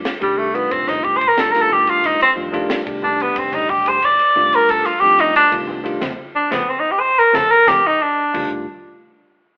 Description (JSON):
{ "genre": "electric jazz fusion", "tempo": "90 BPM", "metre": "4/4", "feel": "straight", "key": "F mixolydian", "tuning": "A4 = 441 Hz", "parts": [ { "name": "bell-like tine electric piano", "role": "accompaniment", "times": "0.0-8.7 s", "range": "Eb3 to G4", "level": "-25 LUFS", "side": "equal", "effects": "none" }, { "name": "tight funk drum kit", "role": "drums", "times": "0.1-8.5 s", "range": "crash cymbal, kick drum, ride cymbal, snare drum", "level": "-28 LUFS", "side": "equal", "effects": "none" }, { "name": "warm tenor saxophone", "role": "melody", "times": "0.2-8.5 s", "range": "G3 to D5", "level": "-13 LUFS", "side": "equal", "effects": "none" }, { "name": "mellow fretless electric bass", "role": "bass", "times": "0.2-8.7 s", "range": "F1 to F2", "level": "-38 LUFS", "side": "equal", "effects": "none" }, { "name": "congas", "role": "percussion", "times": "0.9-8.7 s", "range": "none", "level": "-35 LUFS", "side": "equal", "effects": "none" } ], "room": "moderate stone room reverb, RT60 1.3 s", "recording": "band playing live in one room, telephone sound", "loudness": "-13 LUFS", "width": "side -32 dB against mid", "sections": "0.0-8.7 A section", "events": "tenor saxophone solo 0.0-8.7; band accent 6.0-8.7; drum fill 7.3-8.7", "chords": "0.0 F13; 8.7 N.C." }